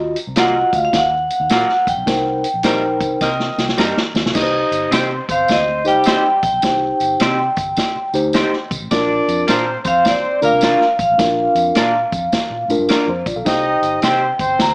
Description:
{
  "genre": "uptempo 1960s-style soul",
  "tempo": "105 BPM",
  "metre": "4/4",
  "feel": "swing 65% on 8ths",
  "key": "unclear",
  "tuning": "A4 = 439 Hz",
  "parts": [
    { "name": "mellow tine electric piano", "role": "accompaniment", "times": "0.0-14.1 s", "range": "D4 to F5", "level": "-19 LUFS", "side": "left 1 dB", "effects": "medium stereo tremolo" },
    { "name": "vintage muted fingered electric bass", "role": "bass", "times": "0.0-14.7 s", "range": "G1 to C3", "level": "-28 LUFS", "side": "equal", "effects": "none" },
    { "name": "vintage drum kit", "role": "drums", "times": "0.2-14.7 s", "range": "crash cymbal, hi-hat, kick drum, snare drum", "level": "-20 LUFS", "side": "equal", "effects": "none" },
    { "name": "tambourine", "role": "percussion", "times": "0.2-14.7 s", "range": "none", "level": "-29 LUFS", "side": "equal", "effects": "none" },
    { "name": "vibraphone with medium hard mallets", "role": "melody", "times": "0.4-14.7 s", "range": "D5 to Bb5", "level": "-16 LUFS", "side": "equal", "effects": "none" },
    { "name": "electric guitar through a small old amp", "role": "stabs", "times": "0.4-14.2 s", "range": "Gb3 to C5", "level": "-23 LUFS", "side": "right 1 dB", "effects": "spring reverb, tape echo" },
    { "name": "clear horn section", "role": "second line", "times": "3.2-14.7 s", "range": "G3 to Eb5", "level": "-20 LUFS", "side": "equal", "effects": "none" }
  ],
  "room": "moderate studio reverb, RT60 0.5 s",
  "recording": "small speaker sound",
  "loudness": "-14 LUFS",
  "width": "side -28 dB against mid",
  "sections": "0.0-4.3 A section; 4.3-14.7 B section",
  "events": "band accent 2.1-4.3; drum fill 3.2-4.3",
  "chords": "0.0 Ebmadd9; 2.1 Cm7; 4.3 Cm; 8.9 Bb; 13.5 Cm"
}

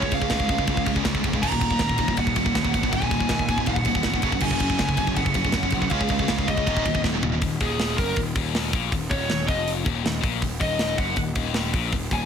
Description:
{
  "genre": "heavy metal",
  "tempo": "160 BPM",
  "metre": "4/4",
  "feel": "straight",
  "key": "Eb minor",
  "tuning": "A4 = 442 Hz",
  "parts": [
    { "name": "high-gain lead guitar", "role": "melody", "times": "0.0-12.3 s", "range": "Ab4 to Bb5", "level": "-28 LUFS", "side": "right 1 dB", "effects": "distortion, ping-pong delay" },
    { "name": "heavy high-gain guitar", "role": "riff", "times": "0.0-12.3 s", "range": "Eb2 to Db4", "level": "-28 LUFS", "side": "left 12 dB", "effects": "distortion" },
    { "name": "heavy high-gain guitar", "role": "riff", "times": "0.0-7.4 s", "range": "Eb2 to Db4", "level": "-28 LUFS", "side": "right 12 dB", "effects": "distortion" },
    { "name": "fuzz picked electric bass", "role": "bass", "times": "0.0-12.3 s", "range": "Eb1 to Gb2", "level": "-28 LUFS", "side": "equal", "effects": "overdrive" },
    { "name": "tight metal drum kit", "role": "drums", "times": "0.0-12.2 s", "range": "crash cymbal, hi-hat, kick drum, ride cymbal, snare drum, toms", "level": "-26 LUFS", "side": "equal", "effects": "none" }
  ],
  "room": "little or no reverb",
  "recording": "dense, heavily limited modern master",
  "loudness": "-21 LUFS",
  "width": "side -7 dB against mid",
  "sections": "0.0-7.4 A section; 7.4-12.3 B section",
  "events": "drum fill 7.0-7.4; lead electric guitar solo 7.4-12.3",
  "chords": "0.0 Db; 1.4 Ebm; 4.2 Gb5; 5.9 Db; 6.7 Eb5; 7.4 Ebm"
}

